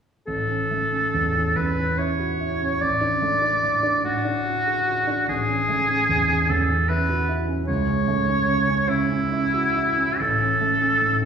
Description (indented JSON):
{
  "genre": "classical, romantic duo for oboe and grand piano",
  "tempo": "48 BPM (dotted quarters)",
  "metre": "6/8",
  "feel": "uneven beats, rubato",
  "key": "A major",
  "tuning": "A4 = 438 Hz",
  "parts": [
    { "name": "bright oboe", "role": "melody", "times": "0.3-11.3 s", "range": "E4 to D5", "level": "-21 LUFS", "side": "equal", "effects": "none" },
    { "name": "warm concert grand piano", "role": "accompaniment", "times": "0.3-11.3 s", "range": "A1 to G#4", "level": "-24 LUFS", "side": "right 1 dB", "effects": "none" }
  ],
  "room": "wet scoring stage reverb, RT60 1.8 s",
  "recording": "heard from further back in the room, studio reverb",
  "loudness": "-20 LUFS",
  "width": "side -7 dB against mid",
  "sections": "0.3-11.3 A section",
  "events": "none",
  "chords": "0.3 A; 2.8 D/A; 5.3 A; 7.7 A/C#; 10.2 A"
}